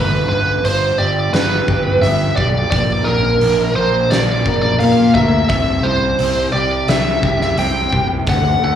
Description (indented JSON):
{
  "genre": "quiet-loud alternative rock",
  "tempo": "86 BPM",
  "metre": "4/4",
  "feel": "straight",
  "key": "unclear",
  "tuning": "A4 = 441 Hz",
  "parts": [
    { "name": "biting lead guitar", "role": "melody", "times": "0.0-8.8 s", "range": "Bb4 to G5", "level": "-17 LUFS", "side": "right 1 dB", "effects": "overdrive, slapback echo" },
    { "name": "electric guitar through a small old amp", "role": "arpeggios", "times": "0.0-8.8 s", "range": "G2 to Bb4", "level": "-22 LUFS", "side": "left 1 dB", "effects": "slapback echo" },
    { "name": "fuzz picked electric bass", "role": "bass", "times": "0.0-8.8 s", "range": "G1 to Bb2", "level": "-18 LUFS", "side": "equal", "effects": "overdrive" },
    { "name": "oversized low-tuned drum kit", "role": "drums", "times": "0.6-8.4 s", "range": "hi-hat, kick drum, snare drum", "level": "-21 LUFS", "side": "equal", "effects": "none" }
  ],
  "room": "small room ambience",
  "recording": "live gig heard through the venue's PA, club reverb, studio ambience",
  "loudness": "-13 LUFS",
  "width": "side -9 dB against mid",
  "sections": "0.0-8.8 A section",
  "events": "none",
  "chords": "0.0 G; 2.7 Bb; 5.5 Csus2"
}